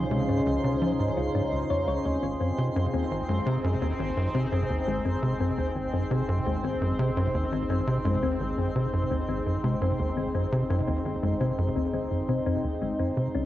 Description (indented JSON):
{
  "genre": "ambient",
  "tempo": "85 BPM",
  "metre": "4/4",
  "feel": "straight",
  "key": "unclear",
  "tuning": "A4 = 440 Hz",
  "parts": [
    { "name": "sweeping resonant pad", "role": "sustained chords", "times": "0.0-13.5 s", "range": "Db3 to Ab4", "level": "-30 LUFS", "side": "equal", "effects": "chorus" },
    { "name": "tight sequencer bass", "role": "riff", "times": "0.0-13.5 s", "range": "Ab1 to F3", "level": "-28 LUFS", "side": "right 1 dB", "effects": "analog delay" },
    { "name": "warm sub bass", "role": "bass", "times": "0.0-13.5 s", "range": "Ab1 to Db2", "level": "-41 LUFS", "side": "right 1 dB", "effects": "none" },
    { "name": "twinkling granular texture", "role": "texture", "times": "0.0-13.4 s", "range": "C5", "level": "-38 LUFS", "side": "right 1 dB", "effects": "built-in reverb" },
    { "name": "thumb-piano-like synth pluck", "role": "arpeggios", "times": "0.1-13.5 s", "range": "Ab3 to Db5", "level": "-33 LUFS", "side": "left 6 dB", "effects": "chorus, auto-pan, analog delay" }
  ],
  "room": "wet spring reverb, RT60 1.6 s",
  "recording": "home recording on cassette",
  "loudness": "-25 LUFS",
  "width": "side -14 dB against mid",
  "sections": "0.0-13.3 A section",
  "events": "none",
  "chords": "0.0 Dbadd9; 2.1 Ab"
}